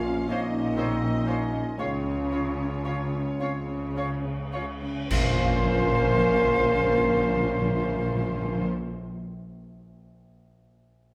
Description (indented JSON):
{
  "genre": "cinematic, emotional film score for orchestra",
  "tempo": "35-43 BPM (dotted quarters)",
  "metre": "6/8",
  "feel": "rubato",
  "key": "Bb minor",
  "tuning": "A4 = 445 Hz",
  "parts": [
    { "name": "muted studio violin section", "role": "second line", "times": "0.0-8.7 s", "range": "Db4 to F5", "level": "-44 LUFS", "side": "equal", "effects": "none" },
    { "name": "warm clarinet", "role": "second line", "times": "0.0-8.7 s", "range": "Bb3 to F4", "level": "-40 LUFS", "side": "equal", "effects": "none" },
    { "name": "warm concert grand piano", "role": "accompaniment", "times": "0.0-11.1 s", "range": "Bb1 to F5", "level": "-38 LUFS", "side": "equal", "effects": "none" },
    { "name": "mellow French horn section", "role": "sustained chords", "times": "0.0-8.7 s", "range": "Db4 to Bb4", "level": "-31 LUFS", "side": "equal", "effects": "none" },
    { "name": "muted studio cello section", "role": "bass", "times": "0.0-8.7 s", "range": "Bb2 to Db3", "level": "-35 LUFS", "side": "equal", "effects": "none" },
    { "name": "muted studio double bass section", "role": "bass", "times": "0.0-8.7 s", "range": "Bb1 to Db2", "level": "-35 LUFS", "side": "equal", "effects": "none" },
    { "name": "timpani", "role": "percussion", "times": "0.0-0.3, 5.1-8.7 s", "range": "Bb2", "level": "-32 LUFS", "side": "equal", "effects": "none" },
    { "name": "muted studio violin section", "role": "melody", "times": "0.3-8.7 s", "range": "C5 to Db5", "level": "-40 LUFS", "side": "equal", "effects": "none" },
    { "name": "bright silver concert flute", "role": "second line", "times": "0.3-8.7 s", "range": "F5", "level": "-36 LUFS", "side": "equal", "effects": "none" },
    { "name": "mellow oboe", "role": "second line", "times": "0.3-8.7 s", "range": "C5 to Db5", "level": "-38 LUFS", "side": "equal", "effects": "none" },
    { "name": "muted studio viola section", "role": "accompaniment", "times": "0.3-8.7 s", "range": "Db3 to F4", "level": "-41 LUFS", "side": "equal", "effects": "none" },
    { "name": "cymbal swell, clash cymbals and concert bass drum", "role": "percussion", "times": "1.8-7.3 s", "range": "none", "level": "-34 LUFS", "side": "equal", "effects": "none" }
  ],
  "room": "moderate scoring stage reverb, RT60 1.6 s",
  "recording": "none",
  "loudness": "-26 LUFS",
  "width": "mono",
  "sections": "0.0-5.1 A section; 5.1-8.5 B section",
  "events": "slowing down 0.0-5.1; band accent 5.1-6.2",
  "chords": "0.0 Bbmadd9; 1.8 Db; 5.1 Bbmadd9"
}